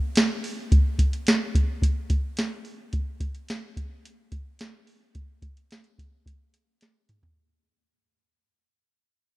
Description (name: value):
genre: indie pop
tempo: 108 BPM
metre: 4/4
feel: straight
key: none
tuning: none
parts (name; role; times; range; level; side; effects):
- soft vintage rhythm box; drums; 0.2-7.4 s; hi-hat, kick drum, snare drum, toms; -22 LUFS; equal; none
room: light reverb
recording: rough home demo mix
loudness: -23 LUFS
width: side -19 dB against mid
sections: 0.0-7.4 A section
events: fade-out 0.0-7.4; drum fill 6.8-7.4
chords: none